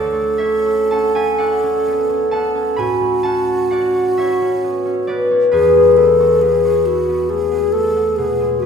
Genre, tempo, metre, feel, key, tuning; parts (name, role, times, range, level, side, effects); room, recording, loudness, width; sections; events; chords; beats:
classical, impressionist duo for flute and harp; 37-46 BPM (dotted quarters); 12/8; rubato; D lydian; A4 = 436 Hz
mellow hollow concert flute; melody; 0.0-8.7 s; F#4 to A4; -16 LUFS; equal
concert harp; accompaniment; 0.0-8.7 s; D2 to B5; -16 LUFS; left 1 dB
wet scoring stage reverb, RT60 1.5 s; recorded in a church or concert hall; -13 LUFS; side -6 dB against mid
0.0-8.7 A section
0.0 Dmaj9; 5.5 Eadd9
1.39 2.78 4.19 | 5.54 6.87 8.18